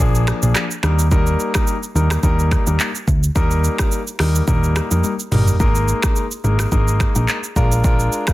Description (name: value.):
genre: afrobeats.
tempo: 107 BPM.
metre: 4/4.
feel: swing 55% on 16ths.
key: Eb major.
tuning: A4 = 440 Hz.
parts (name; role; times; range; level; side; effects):
clear concert grand piano; accompaniment; 0.0-8.3 s; F3 to Bb4; -22 LUFS; left 2 dB; none.
hollow-body short-scale picked electric bass; bass; 0.0-8.1 s; G1 to F2; -17 LUFS; equal; none.
afro-pop drum kit; drums; 0.1-8.3 s; finger snaps, handclaps, hi-hat, kick drum, rim click, shaker, toms; -19 LUFS; equal; soft clipping on snare.
room: digital ambience.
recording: dense, heavily limited modern master.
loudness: -15 LUFS.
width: side -17 dB against mid.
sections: 0.0-8.3 A section.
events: drum fill 5.0-5.6.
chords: 0.0 Bb7; 0.8 Eb; 5.6 Absus2; 7.6 Bb7.